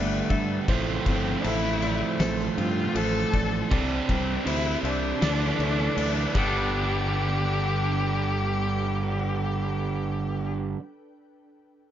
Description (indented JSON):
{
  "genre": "post-rock",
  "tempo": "80 BPM",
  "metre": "4/4",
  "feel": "straight",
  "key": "G mixolydian",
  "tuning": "A4 = 437 Hz",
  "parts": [
    { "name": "clear cello", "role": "melody", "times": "0.0-10.5 s", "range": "A3 to A4", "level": "-30 LUFS", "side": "left 4 dB", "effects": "slapback echo" },
    { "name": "ethereal airy pad", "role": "sustained chords", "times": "0.0-10.5 s", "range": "D4 to D6", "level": "-43 LUFS", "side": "left 2 dB", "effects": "none" },
    { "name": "felt-muted upright piano", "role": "arpeggios", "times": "0.0-7.1 s", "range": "G4 to E5", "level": "-39 LUFS", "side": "right 1 dB", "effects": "slapback echo" },
    { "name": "twangy electric guitar", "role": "arpeggios", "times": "0.0-10.8 s", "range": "A2 to A4", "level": "-36 LUFS", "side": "left 6 dB", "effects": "spring reverb, slapback echo" },
    { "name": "distorted electric guitar", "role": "riff", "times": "0.0-10.8 s", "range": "G2 to F4", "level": "-28 LUFS", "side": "right 6 dB", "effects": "distortion" },
    { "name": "modern bright fingered electric bass", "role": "bass", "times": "0.0-10.7 s", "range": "G1 to G2", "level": "-29 LUFS", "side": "left 1 dB", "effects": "none" },
    { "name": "oversized low-tuned drum kit", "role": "drums", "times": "0.3-6.5 s", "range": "crash cymbal, kick drum, snare drum", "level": "-30 LUFS", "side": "left 1 dB", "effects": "none" }
  ],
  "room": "light reverb",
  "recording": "nothing above 7.5 kHz",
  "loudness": "-23 LUFS",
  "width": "side -10 dB against mid",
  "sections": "0.0-6.7 A section; 6.7-9.7 B section",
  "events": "none",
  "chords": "0.0 Gadd9; 0.7 F; 3.7 Csus2; 5.2 Dsus2; 6.3 Gadd9"
}